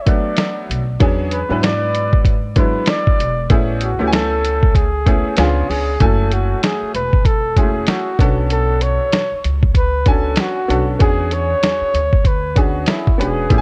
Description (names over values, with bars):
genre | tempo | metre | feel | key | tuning
hip hop, jazz-hop | 96 BPM | 4/4 | swing 59% on 16ths | unclear | A4 = 444 Hz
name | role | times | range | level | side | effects
mellow flugelhorn | melody | 0.0-13.6 s | E4 to D5 | -23 LUFS | equal | tape echo
clear upright piano | accompaniment | 0.1-13.6 s | F#3 to G#5 | -24 LUFS | equal | none
lo-fi sampler-style drum kit | drums | 0.1-13.6 s | hi-hat, kick drum, snare drum | -18 LUFS | equal | none
upright bass | bass | 0.7-13.6 s | E1 to G#2 | -23 LUFS | equal | none
room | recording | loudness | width
small room ambience | dark, warm production | -16 LUFS | mono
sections
0.0-6.0 A section; 6.0-13.6 B section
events
none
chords
0.0 Bm7; 1.0 E13; 3.5 Amaj7; 5.4 C#7b9; 6.0 F#m9; 8.2 Bm9; 11.0 E13